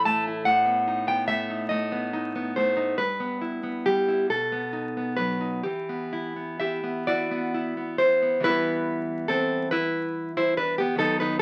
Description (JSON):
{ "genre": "romantic piece for solo classical guitar", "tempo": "42-50 BPM (dotted quarters)", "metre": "6/8", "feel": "rubato", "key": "E minor", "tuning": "A4 = 440 Hz", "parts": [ { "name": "nylon-string guitar", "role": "solo", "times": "0.0-11.4 s", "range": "G2 to A5", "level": "-26 LUFS", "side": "equal", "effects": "none" } ], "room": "moderate studio reverb, RT60 0.7 s", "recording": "very old 78 rpm record, vinyl crackle", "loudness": "-26 LUFS", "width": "mono", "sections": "0.0-8.4 A section; 8.4-11.4 A section", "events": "none", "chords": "0.5 B7/A; 3.0 Em/G; 4.3 B7; 5.6 Em" }